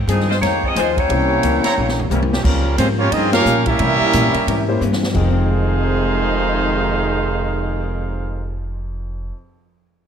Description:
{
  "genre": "jazz, big band swing",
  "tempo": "178 BPM",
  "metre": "4/4",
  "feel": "swing 62% on 8ths",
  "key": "F minor",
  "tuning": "A4 = 440 Hz",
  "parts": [
    { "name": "upright bass", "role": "bass", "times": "0.0-9.3 s", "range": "F1 to C3", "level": "-21 LUFS", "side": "equal", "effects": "none" },
    { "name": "warm saxophone section", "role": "melody", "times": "0.1-2.1 s", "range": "F3 to Eb5", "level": "-19 LUFS", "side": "left 2 dB", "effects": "none" },
    { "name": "archtop guitar, miked and amplified", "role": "accompaniment", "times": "0.1-9.4 s", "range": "F2 to Db4", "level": "-27 LUFS", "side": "left 7 dB", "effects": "none" },
    { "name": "swinging big-band drum kit", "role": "drums", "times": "0.1-7.8 s", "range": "crash cymbal, cymbal swell, hi-hat, kick drum, ride cymbal, snare drum, toms", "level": "-24 LUFS", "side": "equal", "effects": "none" },
    { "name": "mellow trumpet section", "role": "stabs", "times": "0.8-1.7 s", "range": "E4 to Bb5", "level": "-26 LUFS", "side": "right 3 dB", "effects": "none" },
    { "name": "clear trombone section", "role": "second line", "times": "0.9-8.6 s", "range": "F2 to F4", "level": "-23 LUFS", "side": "right 4 dB", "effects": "none" },
    { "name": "clear concert grand piano", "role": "accompaniment", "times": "1.1-9.3 s", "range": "F2 to G5", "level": "-27 LUFS", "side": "left 4 dB", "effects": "none" },
    { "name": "clear trumpet section", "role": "melody", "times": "2.1-8.6 s", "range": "G3 to F5", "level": "-20 LUFS", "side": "right 1 dB", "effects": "none" }
  ],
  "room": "light reverb",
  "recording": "none",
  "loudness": "-15 LUFS",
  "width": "side -8 dB against mid",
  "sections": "0.0-2.4 A section; 2.4-5.1 B section; 5.1-7.8 C section",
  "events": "drum fill 1.8-2.4, 4.8-5.1; band accent 3.3",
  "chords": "0.0 Fm7; 1.1 C7b9; 2.4 Gm7b5; 3.8 C7b9; 5.1 Fm7"
}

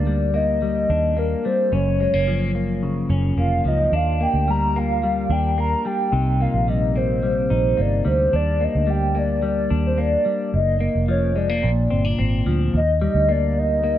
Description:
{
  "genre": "indie pop, bedroom pop",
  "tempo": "109 BPM",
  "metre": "4/4",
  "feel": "straight",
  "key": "Eb major",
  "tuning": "A4 = 439 Hz",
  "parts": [
    { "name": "hollow clarinet-like synth lead", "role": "melody", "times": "0.0-14.0 s", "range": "Bb4 to Bb5", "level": "-22 LUFS", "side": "equal", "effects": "lush chorus, ping-pong delay" },
    { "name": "clean electric guitar", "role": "accompaniment", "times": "0.0-14.0 s", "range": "Gb2 to Eb4", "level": "-24 LUFS", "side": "left 3 dB", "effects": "lush chorus, vibrato effect" },
    { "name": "vintage muted fingered electric bass", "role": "bass", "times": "0.0-14.0 s", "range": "F1 to Eb2", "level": "-22 LUFS", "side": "right 1 dB", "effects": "none" }
  ],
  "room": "light reverb",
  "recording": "none",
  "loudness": "-18 LUFS",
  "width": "side -12 dB against mid",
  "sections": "0.0-12.7 A section; 12.7-14.0 B section",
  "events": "none",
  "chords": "0.0 Ebmaj7; 1.7 Gbmaj7; 3.9 Ebmaj7; 6.1 Cm7; 8.3 Ebmaj7; 10.5 Gbmaj7; 11.6 Bbadd9; 12.7 Ebmaj7"
}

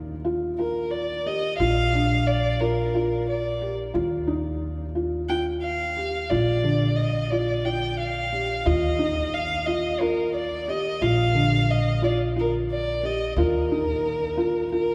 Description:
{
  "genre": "contemporary instrumental, chamber music in an uneven meter",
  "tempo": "178 BPM (eighths)",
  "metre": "7/8",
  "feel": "straight",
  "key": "Bb major",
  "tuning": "A4 = 440 Hz",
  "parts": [
    { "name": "felt-muted upright piano", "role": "arpeggios", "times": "0.0-14.9 s", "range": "D3 to G4", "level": "-28 LUFS", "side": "equal", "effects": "none" },
    { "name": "upright bass", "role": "bass", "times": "0.0-14.9 s", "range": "Bb1 to Eb2", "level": "-30 LUFS", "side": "equal", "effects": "none" },
    { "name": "dark violin", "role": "melody", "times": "0.6-14.9 s", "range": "Bb4 to G5", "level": "-29 LUFS", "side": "equal", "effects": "none" }
  ],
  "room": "wet cathedral reverb, RT60 5.0 s",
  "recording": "recorded in a church or concert hall",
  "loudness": "-24 LUFS",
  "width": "mono",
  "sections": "0.0-14.9 A section",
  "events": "none",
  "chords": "0.0 Ebadd9; 1.6 Bb; 3.9 Ebsus2; 6.3 Bb; 8.7 Ebsus2; 11.0 Bb; 13.4 Ebsus2"
}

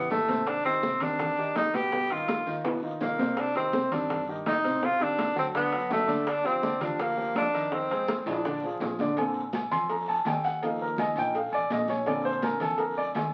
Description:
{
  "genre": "Afro-Cuban jazz",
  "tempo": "165 BPM",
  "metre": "4/4",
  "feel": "straight",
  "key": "Bb major from 9.2 s",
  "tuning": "A4 = 440 Hz",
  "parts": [
    { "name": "clear tenor saxophone", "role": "melody", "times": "0.0-8.8 s", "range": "A3 to G4", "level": "-30 LUFS", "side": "equal", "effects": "none" },
    { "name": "warm baby grand piano", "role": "accompaniment", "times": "0.0-13.3 s", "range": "Cb3 to C6", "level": "-33 LUFS", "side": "equal", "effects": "none" },
    { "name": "upright bass", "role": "bass", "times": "0.0-13.3 s", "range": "G1 to A2", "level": "-45 LUFS", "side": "equal", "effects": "none" },
    { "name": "bongos and cowbell", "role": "percussion", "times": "0.1-13.3 s", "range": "none", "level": "-40 LUFS", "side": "equal", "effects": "none" },
    { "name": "congas", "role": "percussion", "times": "0.1-13.3 s", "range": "none", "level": "-39 LUFS", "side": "equal", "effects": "none" },
    { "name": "guiro", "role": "percussion", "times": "0.1-13.3 s", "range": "none", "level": "-52 LUFS", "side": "equal", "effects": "none" },
    { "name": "timbales and agogo bells", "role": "percussion", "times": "0.1-13.3 s", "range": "none", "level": "-37 LUFS", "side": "equal", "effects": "none" }
  ],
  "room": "moderate studio reverb, RT60 0.7 s",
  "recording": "very old 78 rpm record, vinyl crackle",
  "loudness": "-28 LUFS",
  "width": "mono",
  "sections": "0.0-9.2 A section; 9.2-13.3 B section",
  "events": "drum fill 2.6-3.4, 8.3-9.2; grand piano solo 9.2-13.3",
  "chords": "0.5 Abmaj7; 1.9 G7alt; 3.4 Cm; 4.8 Am7b5; 5.5 D; 6.3 Gm7; 7.7 Fm7; 8.4 Bb7; 9.2 Bbadd9; 10.6 Ebsus2; 12.1 Bbadd9"
}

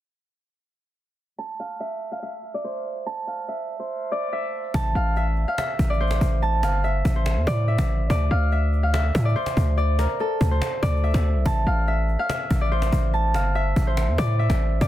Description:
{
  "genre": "hip hop, trap",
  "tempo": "143 BPM",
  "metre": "4/4",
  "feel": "half-time",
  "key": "A minor",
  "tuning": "A4 = 441 Hz",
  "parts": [
    { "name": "Celtic harp", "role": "melody", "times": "1.4-14.9 s", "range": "A4 to A5", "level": "-26 LUFS", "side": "right 1 dB", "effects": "tape echo" },
    { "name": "hard-hitting 808-style bass", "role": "bass", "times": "4.7-14.9 s", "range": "G1 to A2", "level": "-21 LUFS", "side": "equal", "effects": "none" },
    { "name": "cajon", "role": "drums", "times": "4.7-14.9 s", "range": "none", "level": "-30 LUFS", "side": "equal", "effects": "none" }
  ],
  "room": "studio ambience",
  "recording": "dense, heavily limited modern master, low-pass filter",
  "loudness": "-21 LUFS",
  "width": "side -13 dB against mid",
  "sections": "1.4-4.7 A section; 4.7-14.9 B section",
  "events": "filter sweep 1.4-4.7",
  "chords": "1.4 N.C.; 4.7 Am; 8.1 D5; 11.5 Am"
}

